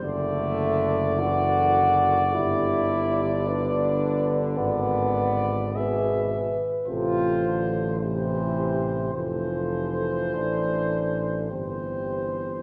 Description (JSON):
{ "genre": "classical, hymn-like piece for brass band", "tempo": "48-55 BPM", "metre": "4/4", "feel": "rubato", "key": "unclear", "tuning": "A4 = 441 Hz", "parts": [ { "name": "mellow cornet", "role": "melody", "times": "0.0-12.6 s", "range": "C5 to E5", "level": "-32 LUFS", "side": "equal", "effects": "none" }, { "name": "dark French horn section", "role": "second line", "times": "0.0-12.5 s", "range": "G4 to B4", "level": "-34 LUFS", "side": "equal", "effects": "none" }, { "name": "clear euphonium", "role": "accompaniment", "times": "0.0-12.6 s", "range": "E3 to G#4", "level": "-29 LUFS", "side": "equal", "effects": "none" }, { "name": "clear trombone", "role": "accompaniment", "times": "0.0-12.6 s", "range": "B2 to E3", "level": "-36 LUFS", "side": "equal", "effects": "none" }, { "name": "mellow tuba", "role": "bass", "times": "0.0-12.6 s", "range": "F1 to A1", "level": "-31 LUFS", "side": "equal", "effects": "none" } ], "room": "wet concert hall reverb, RT60 2.2 s", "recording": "recorded in a church or concert hall", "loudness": "-25 LUFS", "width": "mono", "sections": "0.0-12.6 A section", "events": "none", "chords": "0.0 D/F#; 2.3 G; 4.6 E7/G#; 6.9 Am7; 9.1 Fmaj7; 11.5 C/G", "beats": "| 0.03 1.20 2.34 3.46 | 4.56 5.74 6.86 7.99 | 9.13 10.35 11.51" }